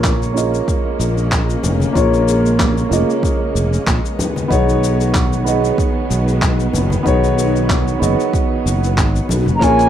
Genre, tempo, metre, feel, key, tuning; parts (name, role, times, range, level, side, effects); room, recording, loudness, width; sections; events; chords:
sunset chillout; 94 BPM; 4/4; swing 54% on 16ths; A4 = 440 Hz
dark grand piano; accompaniment; 0.0-9.9 s; Bb3 to Eb5; -18 LUFS; moving between left 4 dB and right 7 dB; auto-pan, low-pass filter, tape echo, shimmer reverb
warm symphonic string section; sustained chords; 0.0-9.9 s; Db3 to B3; -23 LUFS; right 1 dB; shimmer reverb
sustaining fretless electric bass; bass; 0.0-9.9 s; F1 to B1; -18 LUFS; equal; ensemble chorus
dusty soul sampler-style drum kit; drums; 0.0-9.9 s; handclaps, hi-hat, shaker; -24 LUFS; left 1 dB; studio reverb
electronic kick drum; drums; 0.0-9.8 s; -19 LUFS; equal; overdrive, studio reverb
congas; percussion; 0.0-9.6 s; -25 LUFS; left 2 dB
bright reedy baroque flute; melody; 9.6-9.9 s; Ab5 to Bb5; -14 LUFS; right 3 dB
moderate studio ambience, RT60 0.5 s; rough home demo mix; -14 LUFS; side -10 dB against mid
0.0-9.9 A section
filter sweep on grand piano 0.0-9.9
0.0 Bbm7; 4.2 B69